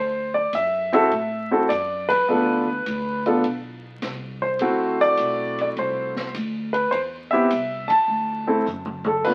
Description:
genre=jazz piano trio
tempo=103 BPM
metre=4/4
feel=swing 69% on 8ths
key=D mixolydian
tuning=A4 = 440 Hz
part: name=warm concert grand piano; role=melody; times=0.0-9.3 s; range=A3 to A5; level=-22 LUFS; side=equal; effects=none
part: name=upright bass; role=bass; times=0.0-9.3 s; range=B1 to A2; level=-36 LUFS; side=equal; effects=none
part: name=swinging big-band drum kit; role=drums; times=0.5-9.3 s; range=crash cymbal, hi-hat, kick drum, ride cymbal, snare drum, toms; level=-39 LUFS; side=equal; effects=none
room=moderate studio reverb, RT60 0.8 s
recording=very old 78 rpm record, vinyl crackle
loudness=-23 LUFS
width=mono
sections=0.0-9.3 A section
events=band accent 2.0, 7.8; drum fill 8.7-9.2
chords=0.0 D7; 2.3 Bm7b5; 6.9 C; 8.1 D

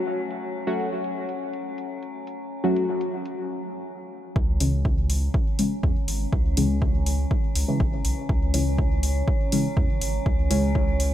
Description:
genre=dub techno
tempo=122 BPM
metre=4/4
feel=straight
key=C# minor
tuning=A4 = 440 Hz
part: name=metallic inharmonic drone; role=texture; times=0.0-11.1 s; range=C#4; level=-34 LUFS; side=left 1 dB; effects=chorus, built-in reverb, sidechain pumping
part: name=electronic hi-hat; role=drums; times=0.1-11.1 s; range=none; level=-31 LUFS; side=left 1 dB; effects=low-pass filter on hats
part: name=deep mellow chord stab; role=stabs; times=0.7-10.7 s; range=C#3 to F#4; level=-27 LUFS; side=left 1 dB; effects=chorus, phaser, sidechain pumping, dub echo
part: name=round analog bass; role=bass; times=4.4-11.1 s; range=G#1 to E2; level=-25 LUFS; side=equal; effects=tube saturation, sidechain pumping
part: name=electronic kick drum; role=drums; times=4.4-10.9 s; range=none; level=-24 LUFS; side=equal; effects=none
room=moderate cathedral reverb, RT60 5.4 s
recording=dreamy mix soaked in reverb, low-pass filter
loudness=-22 LUFS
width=side -12 dB against mid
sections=0.0-4.4 A section; 4.4-11.1 B section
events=filter sweep 0.0-4.4; break 3.4-4.4; filter sweep on synth stab 4.4-11.1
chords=0.0 F#m; 4.4 C#m

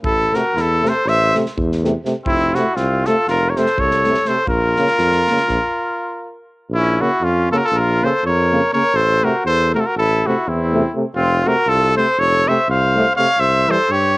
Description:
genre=balkan folk, Balkan brass band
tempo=243 BPM (eighths)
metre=9/8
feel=straight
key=Bb hungarian minor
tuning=A4 = 440 Hz
part: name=warm flugelhorn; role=second line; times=0.0-14.2 s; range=C4 to Db5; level=-23 LUFS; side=left 1 dB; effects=cassette tape
part: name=mellow tuba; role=bass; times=0.0-14.2 s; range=F1 to G2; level=-20 LUFS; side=equal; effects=none
part: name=natural country drum kit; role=percussion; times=0.0-5.6 s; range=kick drum, snare drum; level=-28 LUFS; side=equal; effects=cassette tape
part: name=clear trumpet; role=melody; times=0.1-14.2 s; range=E4 to F5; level=-16 LUFS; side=equal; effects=cassette tape
part: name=mellow euphonium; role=accompaniment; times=0.3-13.8 s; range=G3 to Bb3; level=-23 LUFS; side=left 2 dB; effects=cassette tape
part: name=warm euphonium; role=accompaniment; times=0.3-13.8 s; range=C3 to E3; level=-24 LUFS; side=right 2 dB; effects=cassette tape
room=light reverb, studio reverb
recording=home recording on cassette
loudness=-14 LUFS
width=side -22 dB against mid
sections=0.0-6.7 A section; 6.7-14.2 A section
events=stop 5.6-6.7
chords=0.0 Am; 2.3 F; 4.5 Bbm; 8.9 Am; 11.2 F; 13.4 C

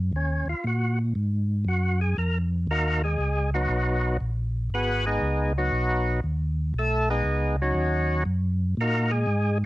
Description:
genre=soul jazz organ trio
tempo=118 BPM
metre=4/4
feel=swing 67% on 8ths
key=Eb minor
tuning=A4 = 435 Hz
part: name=mellow tonewheel organ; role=bass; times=0.0-9.7 s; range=Ab1 to Bb2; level=-25 LUFS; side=equal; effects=chorus vibrato, slow rotary speaker
part: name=percussive tonewheel organ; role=melody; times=0.2-9.6 s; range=Gb3 to Cb5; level=-26 LUFS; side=equal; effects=slow rotary speaker, overdrive, cassette tape
room=little or no reverb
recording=home recording on cassette, nothing above 10.8 kHz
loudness=-23 LUFS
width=side -17 dB against mid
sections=0.0-9.7 A section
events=tonewheel organ solo 0.0-9.7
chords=0.0 Ebm7; 3.7 Abm7; 7.8 Ebm7

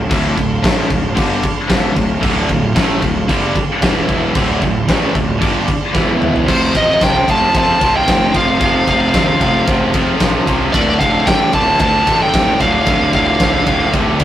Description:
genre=heavy metal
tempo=113 BPM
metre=4/4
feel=straight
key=D minor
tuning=A4 = 440 Hz
part: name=sweeping resonant pad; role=sustained chords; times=0.0-14.2 s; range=F3 to F5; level=-27 LUFS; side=equal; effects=none
part: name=biting overdriven guitar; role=riff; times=0.0-14.2 s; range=D2 to A3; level=-20 LUFS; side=equal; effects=none
part: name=scooped high-gain guitar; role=riff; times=0.0-14.2 s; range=D2 to A3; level=-23 LUFS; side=left 4 dB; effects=distortion
part: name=fuzz picked electric bass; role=bass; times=0.0-14.2 s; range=D1 to F2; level=-20 LUFS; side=equal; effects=overdrive
part: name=big rock drum kit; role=drums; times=0.1-14.2 s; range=crash cymbal, kick drum, ride cymbal, snare drum, toms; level=-17 LUFS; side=equal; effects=none
part: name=heavy high-gain guitar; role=riff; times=2.2-14.2 s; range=D2 to A3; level=-21 LUFS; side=right 4 dB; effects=distortion
part: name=high-gain lead guitar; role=melody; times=6.5-13.9 s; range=C5 to A5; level=-15 LUFS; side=equal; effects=distortion
part: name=high-gain lead guitar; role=second line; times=6.5-13.9 s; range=A3 to F4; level=-27 LUFS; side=right 3 dB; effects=none
room=light reverb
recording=rough rehearsal-room recording, tube saturation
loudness=-12 LUFS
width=side -12 dB against mid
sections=0.0-6.5 A section; 6.5-14.2 B section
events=drum fill 6.0-6.5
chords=0.0 Dm; 3.8 E5; 4.4 Dm; 6.0 E5; 6.5 F; 10.7 Dm

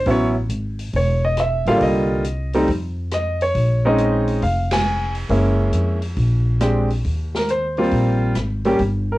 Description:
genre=jazz piano trio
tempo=137 BPM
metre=4/4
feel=swing 67% on 8ths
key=unclear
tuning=A4 = 440 Hz
part: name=bright upright piano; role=melody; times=0.0-9.2 s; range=D3 to Ab5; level=-19 LUFS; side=equal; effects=cassette tape
part: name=upright bass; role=bass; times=0.0-9.2 s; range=E1 to F2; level=-21 LUFS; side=equal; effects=none
part: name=open jazz drum kit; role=drums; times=0.1-8.9 s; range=hi-hat, kick drum, ride cymbal, rim click, snare drum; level=-29 LUFS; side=equal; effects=cassette tape
room=light reverb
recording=home recording on cassette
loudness=-17 LUFS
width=side -17 dB against mid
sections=0.0-7.0 A section; 7.0-9.2 B section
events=band accent 4.6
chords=0.1 A; 1.8 Cm7; 2.7 Dbadd9/F (rootless); 3.6 Bbm11; 5.3 Gb9; 6.2 Bb7; 7.0 Eb69

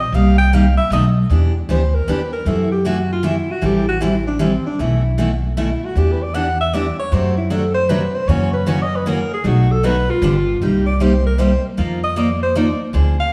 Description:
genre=acoustic string swing (jazz manouche)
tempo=155 BPM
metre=3/4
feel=swing 63% on 8ths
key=E minor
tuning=A4 = 440 Hz
part: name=breathy alto saxophone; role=melody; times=0.0-13.3 s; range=C4 to G5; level=-23 LUFS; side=equal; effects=none
part: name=upright bass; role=bass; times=0.0-13.3 s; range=G1 to F#2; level=-20 LUFS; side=equal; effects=none
part: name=picked steel-string acoustic guitar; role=accompaniment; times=0.1-13.2 s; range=B2 to Bb4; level=-22 LUFS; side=equal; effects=none
room=moderate recital hall reverb, RT60 1.7 s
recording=none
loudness=-17 LUFS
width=mono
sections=0.0-1.3 A section; 1.3-10.6 A section; 10.6-13.3 A section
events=alto saxophone solo 0.0-1.3, 1.3-13.3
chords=0.1 Cm7; 0.9 B7; 1.3 Em7; 2.5 F#m7b5; 3.6 Am7; 4.8 B7sus4; 6.0 Em7; 7.1 D7/F#; 8.3 F#7; 9.4 B7; 10.2 G7; 10.6 Cm7; 11.8 F7sus4

